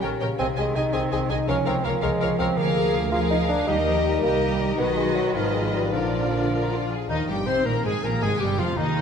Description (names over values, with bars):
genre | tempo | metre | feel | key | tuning
classical | 108 BPM (dotted quarters) | 6/8 | rubato | Eb major | A4 = 440 Hz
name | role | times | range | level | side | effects
rich symphonic violin section | melody | 0.0-9.0 s | Eb4 to Ab5 | -33 LUFS | left 1 dB | none
warm symphonic violin section | second line | 0.0-9.0 s | F4 to C6 | -32 LUFS | left 4 dB | none
clear symphonic viola section | accompaniment | 0.0-9.0 s | Eb3 to Bb4 | -30 LUFS | left 2 dB | none
mellow bassoon | accompaniment | 0.0-6.9 s | F3 to F4 | -26 LUFS | right 2 dB | none
concert harp | arpeggios | 0.0-9.0 s | Ab2 to B4 | -29 LUFS | left 6 dB | none
rich symphonic cello section | bass | 0.0-9.0 s | Eb2 to G3 | -30 LUFS | right 4 dB | none
rich symphonic double bass section | bass | 0.0-9.0 s | F1 to Eb2 | -30 LUFS | right 3 dB | none
clear clarinet | second line | 7.1-9.0 s | Eb4 to C5 | -28 LUFS | left 1 dB | none
mellow French horn section | sustained chords | 7.1-9.0 s | Eb3 to C4 | -32 LUFS | left 2 dB | none
room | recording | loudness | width
wet concert hall reverb, RT60 2.2 s | minimal, uncompressed stereo recording | -21 LUFS | side -7 dB against mid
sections
0.0-7.1 A section; 7.1-9.0 B section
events
none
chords
0.4 Ab/C; 1.5 Bbm7/Db; 2.6 Bb7/D; 3.7 Eb; 4.8 B; 5.3 Fm7b5/Ab; 5.9 Bb; 7.1 Eb; 8.2 Ab